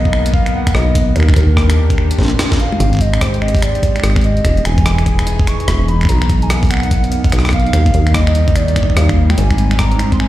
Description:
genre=IDM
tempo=146 BPM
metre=4/4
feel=swing 62% on 16ths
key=unclear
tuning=A4 = 440 Hz
part: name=warbly nostalgic lead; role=melody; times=0.0-10.3 s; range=Bb4 to Db6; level=-22 LUFS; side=equal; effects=chorus, vintage 12-bit sampler grit, ping-pong delay
part: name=warbly tape-like pad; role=sustained chords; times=0.0-10.3 s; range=Eb3 to G#4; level=-22 LUFS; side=left 1 dB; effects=chorus, built-in reverb, sidechain pumping
part: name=deep acid bass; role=bass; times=0.0-10.3 s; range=E1 to Eb2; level=-14 LUFS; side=equal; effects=tube saturation
part: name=electronic kick drum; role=drums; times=0.1-10.2 s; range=none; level=-15 LUFS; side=equal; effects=none
part: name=jungle sampler-style drum kit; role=drums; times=0.1-10.3 s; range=finger snaps, hi-hat, rim click, snare drum, toms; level=-21 LUFS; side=equal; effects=none
part: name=flickering grainy texture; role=texture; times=3.7-10.3 s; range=Eb4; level=-31 LUFS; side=right 2 dB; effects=none
room=little or no reverb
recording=played on a big sound system in a bare room, large studio reverb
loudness=-11 LUFS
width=side -15 dB against mid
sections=0.0-2.8 A section; 2.8-10.3 A section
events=drum fill 2.2-2.8; band accent 2.4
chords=0.0 Bmaj7; 1.2 Ebmaj7; 2.8 Abmaj7; 4.4 Emaj7; 6.1 Bmaj7; 7.7 Ebmaj7; 9.4 Abmaj7

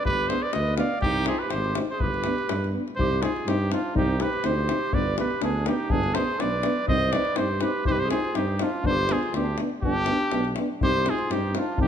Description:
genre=balkan folk, Balkan brass band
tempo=123 BPM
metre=2/4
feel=swing 55% on 16ths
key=unclear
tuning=A4 = 440 Hz
part: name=clear cornet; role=melody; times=0.0-11.9 s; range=F4 to F5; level=-27 LUFS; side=equal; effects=none
part: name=warm clarinet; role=second line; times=0.0-11.9 s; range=D4 to D5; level=-31 LUFS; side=right 4 dB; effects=none
part: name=mellow tuba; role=bass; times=0.1-11.9 s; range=G1 to G2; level=-29 LUFS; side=right 1 dB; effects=none
part: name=davul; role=percussion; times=0.1-11.9 s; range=none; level=-30 LUFS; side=left 3 dB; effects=none
part: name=dark euphonium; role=accompaniment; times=0.3-11.9 s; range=D4 to Eb4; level=-32 LUFS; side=left 8 dB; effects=none
part: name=mellow euphonium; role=accompaniment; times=0.3-11.9 s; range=B3 to C4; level=-32 LUFS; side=right 6 dB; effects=none
room=moderate recital hall reverb, RT60 1.7 s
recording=none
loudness=-22 LUFS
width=side -8 dB against mid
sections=0.0-3.0 A section; 3.0-10.8 B section; 10.8-11.9 B section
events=none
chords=0.0 G; 1.0 Cm; 2.0 G; 3.0 Cm; 4.9 G; 6.9 Cm; 8.8 G; 10.8 Cm

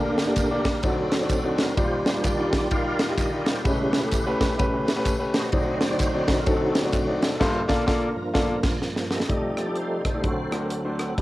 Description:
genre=uptempo gospel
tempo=128 BPM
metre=4/4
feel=swing 61% on 8ths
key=unclear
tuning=A4 = 441 Hz
part: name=clear baby grand piano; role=accompaniment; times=0.0-11.2 s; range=F1 to D5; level=-26 LUFS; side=left 1 dB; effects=cassette tape, plate reverb
part: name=tonewheel organ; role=sustained chords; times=0.0-11.2 s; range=G2 to F5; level=-27 LUFS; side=right 1 dB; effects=slow rotary speaker, overdrive, chorus vibrato, cassette tape, plate reverb
part: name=crisp fusion drum kit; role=drums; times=0.2-11.2 s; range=crash cymbal, hi-hat, kick drum, ride cymbal, rim click, snare drum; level=-25 LUFS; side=equal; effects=none
part: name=tambourine and handclaps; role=percussion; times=0.2-7.3 s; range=none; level=-40 LUFS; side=right 3 dB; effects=none
part: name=pedal harmonium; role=sustained chords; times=9.3-11.2 s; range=F3 to F4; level=-36 LUFS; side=equal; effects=none
room=moderate studio reverb, RT60 0.5 s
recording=home recording on cassette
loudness=-21 LUFS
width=side -17 dB against mid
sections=0.0-9.3 A section; 9.3-11.2 B section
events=tonewheel organ solo 0.0-9.3, 9.3-11.2; band accent 7.4-9.3; grand piano fill 8.3-9.3; drum fill 8.8-9.3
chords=0.0 Gm/D; 0.8 D7b9; 1.8 Ebmaj9; 3.7 A9/C#; 5.5 D7b9; 7.4 Gm9; 9.3 F13; 10.2 D7

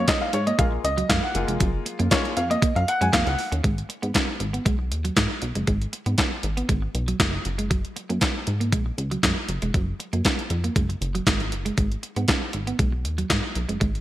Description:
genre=early-eighties boogie funk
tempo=118 BPM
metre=4/4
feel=straight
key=G# dorian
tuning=A4 = 440 Hz
part: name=bright grand piano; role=accompaniment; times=0.0-3.5 s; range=G#3 to G#5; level=-25 LUFS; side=left 1 dB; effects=none
part: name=clean electric guitar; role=riff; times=0.0-13.9 s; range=F#3 to C#4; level=-30 LUFS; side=right 3 dB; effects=wide subtle chorus
part: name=plucky analog bass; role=bass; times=0.0-14.0 s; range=E#1 to G#2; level=-26 LUFS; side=equal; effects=none
part: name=crisp 8-bit digital drum machine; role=drums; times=0.1-14.0 s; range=handclaps, hi-hat, kick drum, snare drum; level=-24 LUFS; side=equal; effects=overdrive, gated reverb
room=light reverb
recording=bright 1980s-style digital production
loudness=-21 LUFS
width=side -14 dB against mid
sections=0.0-3.6 A section; 3.6-14.0 B section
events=grand piano solo 0.0-3.6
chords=0.0 F#maj7; 3.6 G#m7; 7.5 F#; 11.8 G#m

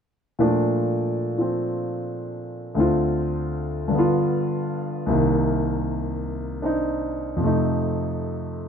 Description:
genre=solo jazz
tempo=102 BPM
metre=4/4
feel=swing 67% on 8ths, rubato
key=Bb major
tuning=A4 = 440 Hz
part: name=warm grand piano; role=solo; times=0.4-8.7 s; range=C2 to F4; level=-21 LUFS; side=equal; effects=none
room=light reverb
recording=minimal, uncompressed stereo recording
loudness=-21 LUFS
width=side -7 dB against mid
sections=0.4-8.7 A section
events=none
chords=0.4 Bbmaj7; 2.8 Dm7; 3.9 G7; 5.1 Cm7; 7.4 F7

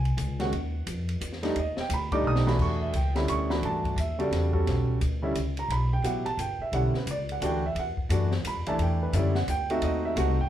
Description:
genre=modal jazz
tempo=174 BPM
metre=3/4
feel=swing 63% on 8ths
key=E dorian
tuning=A4 = 440 Hz
part: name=warm upright piano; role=accompaniment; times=0.0-10.5 s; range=C#3 to D#6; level=-28 LUFS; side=right 1 dB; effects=none
part: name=upright bass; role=bass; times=0.0-10.5 s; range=G1 to G2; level=-28 LUFS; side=equal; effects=none
part: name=open jazz drum kit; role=drums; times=0.1-10.3 s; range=crash cymbal, hi-hat, kick drum, ride cymbal, snare drum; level=-36 LUFS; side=left 1 dB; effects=none
room=wet club reverb, RT60 0.6 s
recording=heard from further back in the room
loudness=-25 LUFS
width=side -11 dB against mid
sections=0.0-2.6 A section; 2.6-10.5 A section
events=drum fill 2.2-2.6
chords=0.0 D#m11; 1.6 B7alt; 2.6 Em11; 9.8 G#7b9

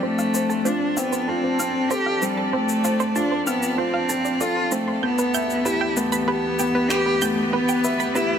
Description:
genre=piano and strings electronica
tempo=96 BPM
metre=4/4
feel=straight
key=D dorian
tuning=A4 = 441 Hz
part: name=rich cello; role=melody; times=0.0-8.4 s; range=G3 to G4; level=-23 LUFS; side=equal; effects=low-pass filter, ping-pong delay
part: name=rich chamber string section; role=sustained chords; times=0.0-8.4 s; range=D2 to D5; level=-29 LUFS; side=right 2 dB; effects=low-pass filter
part: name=analog pluck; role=arpeggios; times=0.0-8.2 s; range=B4 to G6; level=-29 LUFS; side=right 4 dB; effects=chorus, ping-pong delay
part: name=felt-muted upright piano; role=riff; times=0.0-8.4 s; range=B3 to E5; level=-25 LUFS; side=left 2 dB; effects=ping-pong delay
part: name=electronic shaker and finger snaps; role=drums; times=0.2-8.3 s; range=none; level=-30 LUFS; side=left 3 dB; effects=overdrive
room=moderate huge ambient reverb, RT60 6.8 s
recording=none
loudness=-19 LUFS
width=side -8 dB against mid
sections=0.0-8.4 A section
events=build-up 0.0-8.4; filter sweep on synth arpeggio sound 0.0-8.4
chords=0.0 Dm7; 5.0 Em/D

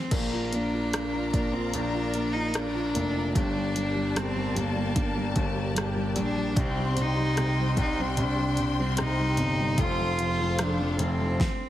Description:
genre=pop ballad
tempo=74 BPM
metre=4/4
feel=straight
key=Bb major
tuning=A4 = 439 Hz
part: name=warm cello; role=melody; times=0.0-11.7 s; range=Bb3 to F4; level=-30 LUFS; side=equal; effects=none
part: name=felt-muted upright piano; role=accompaniment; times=0.0-11.4 s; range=C3 to F4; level=-31 LUFS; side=right 1 dB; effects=none
part: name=warm symphonic string section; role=sustained chords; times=0.1-11.4 s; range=F4 to C6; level=-34 LUFS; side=left 3 dB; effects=none
part: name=warm concert grand piano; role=bass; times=0.1-11.4 s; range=F1 to C2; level=-31 LUFS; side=left 1 dB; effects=none
part: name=deep house drum kit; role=drums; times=0.1-11.6 s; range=crash cymbal, hi-hat, kick drum, rim click, snare drum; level=-30 LUFS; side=equal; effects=none
part: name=fingerpicked steel-string acoustic guitar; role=arpeggios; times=6.6-11.4 s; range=C3 to A4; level=-36 LUFS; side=left 2 dB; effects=none
room=light reverb, studio reverb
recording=heavily compressed radio sound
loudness=-24 LUFS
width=side -13 dB against mid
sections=0.1-11.7 A section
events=none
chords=0.1 Bb; 3.4 Gmadd9; 6.6 Cm; 9.8 F

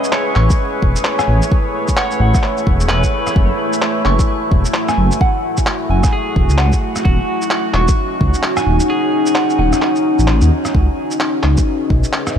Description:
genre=future garage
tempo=130 BPM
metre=4/4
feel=swing 61% on 16ths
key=C# minor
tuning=A4 = 440 Hz
part: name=clean electric guitar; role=accompaniment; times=0.0-9.6 s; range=F#4 to D#5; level=-28 LUFS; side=right 1 dB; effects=sidechain pumping, diffuse ambient delay
part: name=deep dark ambient pad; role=sustained chords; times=0.0-12.4 s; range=A3 to E5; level=-18 LUFS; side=left 1 dB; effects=chorus, built-in reverb, vintage 12-bit sampler grit, sidechain pumping
part: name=electronic shaker, handclaps and rim click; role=drums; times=0.0-12.3 s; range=none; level=-23 LUFS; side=equal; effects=none
part: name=soft synth bell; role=melody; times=0.4-9.8 s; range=F#5 to C#6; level=-24 LUFS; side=right 1 dB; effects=chorus, phaser, tape echo
part: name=swelling detuned saw bass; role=bass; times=0.4-12.4 s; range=D#1 to D#2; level=-14 LUFS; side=equal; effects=sidechain pumping
part: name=electronic kick drum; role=drums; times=0.5-12.0 s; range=none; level=-16 LUFS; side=equal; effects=none
room=moderate cathedral reverb, RT60 4.6 s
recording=dreamy mix soaked in reverb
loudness=-13 LUFS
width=side -8 dB against mid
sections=0.0-10.7 A section; 10.7-12.4 B section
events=kick drops out 8.9-10.7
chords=0.0 Amaj9; 3.4 F#m7; 7.1 D#m7; 10.7 C#m7

